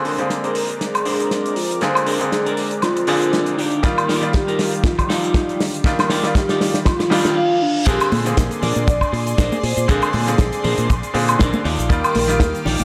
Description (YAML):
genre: nu-disco, nu disco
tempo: 119 BPM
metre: 4/4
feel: swing 55% on 16ths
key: Bb mixolydian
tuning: A4 = 441 Hz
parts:
  - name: soft octave-layered synth lead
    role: melody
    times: 0.0-12.8 s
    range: D4 to D5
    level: -25 LUFS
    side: equal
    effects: chorus, phaser, cassette tape, tape echo
  - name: bright grand piano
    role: accompaniment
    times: 0.0-12.8 s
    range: D3 to D5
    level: -27 LUFS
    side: equal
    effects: none
  - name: lush unison pad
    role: sustained chords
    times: 0.0-12.8 s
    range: Eb3 to D6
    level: -31 LUFS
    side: equal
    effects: chorus, sidechain pumping
  - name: clean electric guitar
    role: riff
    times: 0.0-12.8 s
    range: D4 to G5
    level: -27 LUFS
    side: equal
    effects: subtle chorus, low-pass filter
  - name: damped 70s drum kit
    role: drums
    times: 0.1-12.8 s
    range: crash cymbal, hi-hat, shaker, snare drum, woodblock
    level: -25 LUFS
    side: equal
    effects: studio reverb
  - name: kick drum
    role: drums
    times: 3.8-12.5 s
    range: none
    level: -20 LUFS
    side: equal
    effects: studio reverb
  - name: reverse cymbal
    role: sound effects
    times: 7.3-7.9 s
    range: none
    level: -31 LUFS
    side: equal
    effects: none
  - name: fingered electric bass with an envelope filter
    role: bass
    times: 7.9-12.8 s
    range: Bb1 to Bb2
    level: -25 LUFS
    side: equal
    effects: none
  - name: congas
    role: percussion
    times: 8.1-12.8 s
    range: none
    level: -28 LUFS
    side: equal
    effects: none
room: moderate echo chamber reverb, RT60 1.5 s, small room reverb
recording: none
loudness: -18 LUFS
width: mono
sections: 0.0-7.9 A section; 7.9-12.8 B section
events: build-up 0.0-7.9; drum fill 0.0-7.4; filter sweep on clean electric guitar 0.0-7.9; clean electric guitar fill 6.9-7.9; reverse cymbal 7.3-7.9; drop 7.9-12.8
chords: 0.0 Bb9; 3.6 Ebmaj9; 7.9 Bb9; 11.7 Ebmaj9